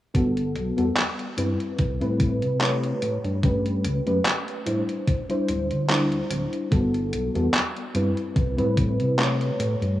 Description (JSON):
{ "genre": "vaporwave", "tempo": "73 BPM", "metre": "4/4", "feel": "swing 54% on 16ths", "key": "G major", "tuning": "A4 = 440 Hz", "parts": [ { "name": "mellow FM electric piano", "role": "accompaniment", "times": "0.1-10.0 s", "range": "G3 to C#5", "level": "-25 LUFS", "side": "equal", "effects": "ensemble chorus, analog delay" }, { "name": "chorused synth bass", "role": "bass", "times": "0.1-10.0 s", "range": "D1 to C3", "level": "-26 LUFS", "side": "equal", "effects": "none" }, { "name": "detuned 8-bit digital drum machine", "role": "drums", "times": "0.1-10.0 s", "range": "handclaps, hi-hat", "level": "-27 LUFS", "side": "equal", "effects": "overdrive" }, { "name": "electronic kick drum", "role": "drums", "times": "0.1-9.0 s", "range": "none", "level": "-22 LUFS", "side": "equal", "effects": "overdrive" } ], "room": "moderate plate reverb, RT60 3.3 s", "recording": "rough home demo mix, cassette tape, small room ambience", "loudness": "-22 LUFS", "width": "side -14 dB against mid", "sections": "0.1-10.0 A section", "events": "none", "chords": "0.1 Gmaj9; 1.8 Cmaj7; 3.0 A9; 5.1 D9sus4; 6.7 Gmaj9; 8.4 Cmaj7" }